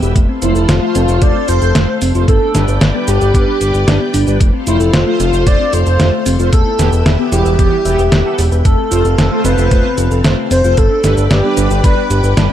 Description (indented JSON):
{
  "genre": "synthwave",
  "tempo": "113 BPM",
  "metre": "4/4",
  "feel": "straight",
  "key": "unclear",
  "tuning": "A4 = 440 Hz",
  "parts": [
    { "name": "string machine, full ensemble", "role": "sustained chords", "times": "0.0-12.5 s", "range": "C4 to E6", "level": "-23 LUFS", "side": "equal", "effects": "phaser, ensemble chorus, sidechain pumping" },
    { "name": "thumb-piano-like synth pluck", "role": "arpeggios", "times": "0.0-12.5 s", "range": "A3 to E5", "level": "-21 LUFS", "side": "left 1 dB", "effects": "chorus, tape echo" },
    { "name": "mellow synth brass", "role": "stabs", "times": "0.0-12.5 s", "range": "E3 to C5", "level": "-22 LUFS", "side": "right 1 dB", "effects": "chorus, phaser" },
    { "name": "fat analog bass", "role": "bass", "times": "0.0-12.5 s", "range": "E1 to G1", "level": "-14 LUFS", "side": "equal", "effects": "sidechain pumping" },
    { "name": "detuned 8-bit digital drum machine", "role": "drums", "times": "0.0-12.5 s", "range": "cabasa, hi-hat, snare drum", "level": "-17 LUFS", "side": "equal", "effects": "none" },
    { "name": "electronic kick drum", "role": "drums", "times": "0.2-11.9 s", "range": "none", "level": "-12 LUFS", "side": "equal", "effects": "none" },
    { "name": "soft octave-layered synth lead", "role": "melody", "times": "0.4-12.3 s", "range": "E4 to D5", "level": "-18 LUFS", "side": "left 1 dB", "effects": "chorus, ping-pong delay" },
    { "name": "airy dreamy lead", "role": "second line", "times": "0.4-12.3 s", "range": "E4 to D5", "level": "-22 LUFS", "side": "equal", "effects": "chorus, cassette tape, tape echo" }
  ],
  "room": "light reverb",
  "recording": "dark, warm production",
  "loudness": "-10 LUFS",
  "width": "side -11 dB against mid",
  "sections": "0.0-12.5 A section",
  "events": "none",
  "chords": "0.2 F; 2.3 G; 4.4 F; 6.5 Em; 8.7 F; 10.8 G",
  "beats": "| 0.16 0.69 1.22 1.75 | 2.28 2.81 3.34 3.87 | 4.40 4.93 5.46 6.00 | 6.53 7.06 7.59 8.12 | 8.65 9.18 9.71 10.24 | 10.78 11.31 11.84 12.37"
}